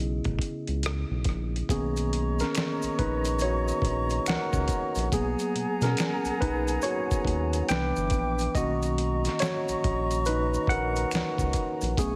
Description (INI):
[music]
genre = R&B, neo-soul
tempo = 70 BPM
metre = 4/4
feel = swing 64% on 16ths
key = B major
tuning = A4 = 439 Hz
[part]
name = tine electric piano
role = accompaniment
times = 0.0-12.2 s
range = C#3 to G5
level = -31 LUFS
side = equal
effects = none
[part]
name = round analog bass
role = bass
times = 0.0-12.2 s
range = G1 to B2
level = -32 LUFS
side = equal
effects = none
[part]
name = dusty soul sampler-style drum kit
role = drums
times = 0.2-12.2 s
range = hi-hat, kick drum, rim click, snare drum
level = -33 LUFS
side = equal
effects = none
[part]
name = flute section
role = sustained chords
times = 1.7-12.2 s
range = G#4 to D6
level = -36 LUFS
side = equal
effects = none
[part]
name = maracas and finger snaps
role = percussion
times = 1.7-12.2 s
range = none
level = -42 LUFS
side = equal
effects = none
[sound]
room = light reverb, studio reverb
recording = heavily compressed radio sound, multiband compression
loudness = -27 LUFS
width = mono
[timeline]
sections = 0.0-1.7 A section; 1.7-12.2 B section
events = tine electric piano solo 1.7-12.2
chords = 0.0 Amaj9; 1.7 Bmaj9; 5.1 G#m9/B; 7.7 Cmaj9; 8.5 Bmaj9